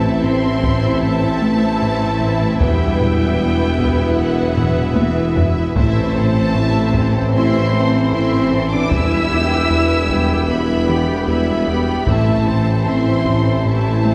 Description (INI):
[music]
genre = cinematic, hybrid orchestral and electronic film score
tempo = 76 BPM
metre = 4/4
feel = straight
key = A minor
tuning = A4 = 441 Hz
[part]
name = warm symphonic violin section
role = melody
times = 0.0-14.1 s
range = E5 to E6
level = -28 LUFS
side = equal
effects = none
[part]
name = rich symphonic violin section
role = second line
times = 0.0-14.1 s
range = G4 to G5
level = -30 LUFS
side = equal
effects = none
[part]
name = warm symphonic viola section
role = accompaniment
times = 0.0-14.1 s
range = G3 to G4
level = -26 LUFS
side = equal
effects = none
[part]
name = clear trombone section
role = sustained chords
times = 0.0-14.1 s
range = G2 to E3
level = -30 LUFS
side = equal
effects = none
[part]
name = hollow soft pad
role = sustained chords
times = 0.0-14.1 s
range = E3 to E5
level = -28 LUFS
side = equal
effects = none
[part]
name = mellow French horn section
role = sustained chords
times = 0.0-14.1 s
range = B3 to E4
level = -28 LUFS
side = equal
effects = none
[part]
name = rubbery square bass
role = riff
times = 0.0-14.1 s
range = E2 to A3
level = -25 LUFS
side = equal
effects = none
[part]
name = dark symphonic cello section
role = bass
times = 0.0-14.1 s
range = E3 to E4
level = -25 LUFS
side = equal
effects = none
[part]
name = mellow tuba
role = bass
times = 0.0-14.1 s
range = E1 to A1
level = -25 LUFS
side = equal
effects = none
[part]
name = warm symphonic double bass section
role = bass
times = 0.0-14.1 s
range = E1 to A1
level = -25 LUFS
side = equal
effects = none
[part]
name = taiko ensemble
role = drums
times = 0.6-14.0 s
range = none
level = -24 LUFS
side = equal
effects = none
[sound]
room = wet scoring stage reverb, RT60 1.7 s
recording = heard from further back in the room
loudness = -16 LUFS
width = mono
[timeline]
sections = 0.0-14.1 A section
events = drum fill 4.6-5.8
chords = 0.0 Am; 2.6 Em; 5.8 Am; 8.9 Em; 12.1 Am